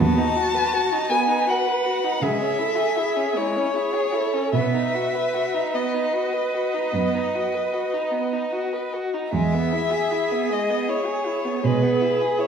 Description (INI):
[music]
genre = classical, slow romantic movement for string quartet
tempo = 49-55 BPM (dotted quarters)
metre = 12/8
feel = rubato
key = unclear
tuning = A4 = 441 Hz
[part]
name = rich violin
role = melody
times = 0.0-12.5 s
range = B4 to A5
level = -24 LUFS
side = left 3 dB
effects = none
[part]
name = rich violin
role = second line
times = 0.0-12.5 s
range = G#3 to B4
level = -26 LUFS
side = right 1 dB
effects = none
[part]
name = rich viola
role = accompaniment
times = 0.0-12.5 s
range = E4 to B4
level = -27 LUFS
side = right 4 dB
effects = none
[part]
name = warm cello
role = bass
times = 0.0-12.5 s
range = D#2 to C#3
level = -25 LUFS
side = right 4 dB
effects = none
[sound]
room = wet recital hall reverb, RT60 1.5 s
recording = studio reverb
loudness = -20 LUFS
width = side -7 dB against mid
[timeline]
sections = 0.0-12.5 A section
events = none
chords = 0.0 B/D#; 2.2 C#m; 4.5 B; 9.3 E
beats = | 0.01 1.11 2.23 3.36 | 4.53 5.74 6.93 8.13 | 9.33 10.51 11.65